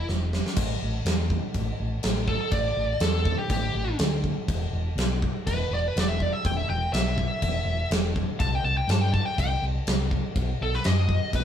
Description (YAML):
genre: blues rock power trio and southern rock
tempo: 122 BPM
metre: 4/4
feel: straight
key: E minor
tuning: A4 = 441 Hz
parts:
  - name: bluesy overdriven lead guitar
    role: melody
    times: 0.0-11.4 s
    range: G4 to A5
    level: -28 LUFS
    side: equal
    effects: distortion
  - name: overdriven fingered electric bass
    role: bass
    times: 0.1-11.4 s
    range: E1 to G2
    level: -27 LUFS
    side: equal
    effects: none
  - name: big rock drum kit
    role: drums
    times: 0.1-11.4 s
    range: crash cymbal, kick drum, snare drum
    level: -27 LUFS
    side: equal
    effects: none
room: light reverb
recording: band playing live in one room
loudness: -23 LUFS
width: side -9 dB against mid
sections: 0.0-11.4 A section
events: lead electric guitar solo 0.0-11.4; drum fill 0.1-0.6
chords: 0.0 N.C.; 0.6 A5; 4.5 E5; 8.4 C5; 10.4 B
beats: 0.07 | 0.56 1.05 1.54 2.03 | 2.52 3.01 3.50 3.99 | 4.48 4.97 5.46 5.95 | 6.45 6.93 7.43 7.92 | 8.41 8.90 9.38 9.88 | 10.36 10.85 11.34